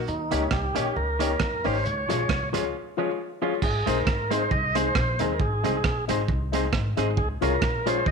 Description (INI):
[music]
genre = ska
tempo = 135 BPM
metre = 4/4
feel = swing 55% on 8ths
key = unclear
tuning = A4 = 444 Hz
[part]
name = upright bass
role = bass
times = 0.0-8.1 s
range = Ab1 to F2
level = -29 LUFS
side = equal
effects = none
[part]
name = tonewheel organ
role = melody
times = 0.1-8.1 s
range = Eb4 to Eb5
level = -28 LUFS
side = right 2 dB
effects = overdrive, stopped rotary speaker
[part]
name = crunchy breakbeat drum kit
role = drums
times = 0.1-8.1 s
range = crash cymbal, hi-hat, kick drum, rim click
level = -28 LUFS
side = right 2 dB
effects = none
[part]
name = semi-hollow electric guitar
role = accompaniment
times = 0.3-8.0 s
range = Eb3 to Ab4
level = -31 LUFS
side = right 11 dB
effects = slapback echo
[part]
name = dark upright piano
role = stabs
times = 0.3-8.0 s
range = Eb4 to Db5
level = -29 LUFS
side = left 11 dB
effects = none
[sound]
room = moderate echo chamber reverb, RT60 1.3 s, small room ambience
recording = 1960s-style stereo with parts hard left and right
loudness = -23 LUFS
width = side -5 dB against mid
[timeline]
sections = 0.0-3.6 A section; 3.6-8.1 B section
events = break 2.7-3.6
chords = 0.1 Eb7; 1.8 Db; 3.6 Ab; 7.2 Db